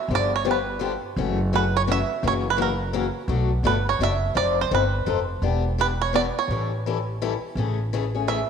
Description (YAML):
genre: acoustic string swing (jazz manouche)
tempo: 169 BPM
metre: 3/4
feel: swing 61% on 8ths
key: unclear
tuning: A4 = 440 Hz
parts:
  - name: bluegrass banjo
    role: melody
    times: 0.0-8.5 s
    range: A#4 to E5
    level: -25 LUFS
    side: right 8 dB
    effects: none
  - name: picked swing-style acoustic guitar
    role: accompaniment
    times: 0.1-8.4 s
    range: B2 to A4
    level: -26 LUFS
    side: left 8 dB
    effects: none
  - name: upright bass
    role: bass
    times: 0.1-8.4 s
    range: E1 to B1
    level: -26 LUFS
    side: equal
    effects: none
room: moderate echo chamber reverb, RT60 2.1 s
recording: 1960s-style stereo with parts hard left and right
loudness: -21 LUFS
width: side -7 dB against mid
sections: 0.0-7.6 A section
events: none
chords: 0.1 G7; 1.2 F#m7; 2.2 F#7; 3.3 Bm7; 4.4 F9; 5.4 Em7; 6.5 A7; 7.6 Amaj7